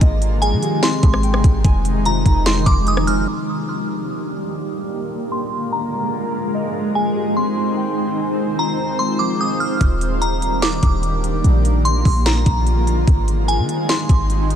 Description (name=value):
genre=hip hop, atmospheric cloud-rap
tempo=147 BPM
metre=4/4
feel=half-time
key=Eb major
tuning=A4 = 440 Hz
part: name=granular cloud pad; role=sustained chords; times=0.0-14.6 s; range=C3 to C5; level=-22 LUFS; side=equal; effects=built-in reverb, sidechain pumping, low-pass filter
part: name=muted felt-like synth keys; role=arpeggios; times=0.0-3.3, 6.5-9.8 s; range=F3 to Ab5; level=-27 LUFS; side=left 1 dB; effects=chorus, low-pass filter, tape echo
part: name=clean 808-style bass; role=bass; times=0.0-3.3, 9.8-14.6 s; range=Eb1 to Eb3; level=-18 LUFS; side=equal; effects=none
part: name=trap drum kit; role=drums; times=0.0-3.2, 9.8-14.6 s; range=hi-hat, kick drum, rim click, snare drum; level=-18 LUFS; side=equal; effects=vintage 12-bit sampler grit
part: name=glassy synth bell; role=melody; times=0.4-14.6 s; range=Ab5 to F6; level=-24 LUFS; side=equal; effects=chorus, low-pass filter, tape echo
room=light reverb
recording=none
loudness=-16 LUFS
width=side -9 dB against mid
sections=0.0-3.3 A section; 3.3-9.8 B section; 9.8-14.6 C section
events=filter sweep 3.3-9.8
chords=0.0 Abmaj7; 1.6 Fm7; 3.3 Ebmaj7; 4.9 Bb7; 6.5 Abmaj7; 8.2 Fm7; 9.8 Ebmaj7; 11.4 Bb7; 13.1 Abmaj7